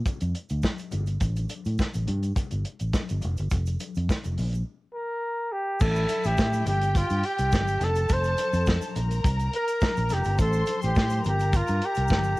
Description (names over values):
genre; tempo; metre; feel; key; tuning
disco; 105 BPM; 4/4; straight; A phrygian; A4 = 440 Hz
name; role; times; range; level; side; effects
warm soul drum kit; drums; 0.1-12.2 s; crash cymbal, hi-hat, kick drum, snare drum; -26 LUFS; equal; cassette tape
congas; percussion; 0.1-12.4 s; none; -40 LUFS; left 6 dB; none
egg shaker; percussion; 0.1-12.4 s; none; -49 LUFS; right 9 dB; none
fingered electric bass; bass; 0.2-12.3 s; F1 to A2; -26 LUFS; equal; none
breathy flugelhorn; melody; 4.9-12.4 s; F4 to C5; -27 LUFS; equal; cassette tape, analog delay
clear studio string section; second line; 5.8-12.4 s; E4 to C6; -34 LUFS; left 2 dB; none
room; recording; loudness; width
little or no reverb; home recording on cassette; -23 LUFS; side -20 dB against mid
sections
0.0-5.8 A section; 5.8-12.4 B section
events
break 4.7-5.8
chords
0.0 Bb (rootless); 1.2 N.C.; 4.4 Gm/Bb; 5.8 A5; 6.7 N.C.; 7.8 F; 9.0 Bb5; 10.4 Am7; 11.2 N.C.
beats
0.05 0.63 | 1.21 1.78 2.36 2.94 | 3.51 4.09 4.66 5.24 | 5.81 6.38 6.96 7.53 | 8.10 8.68 9.25 9.82 | 10.39 10.96 11.53 12.10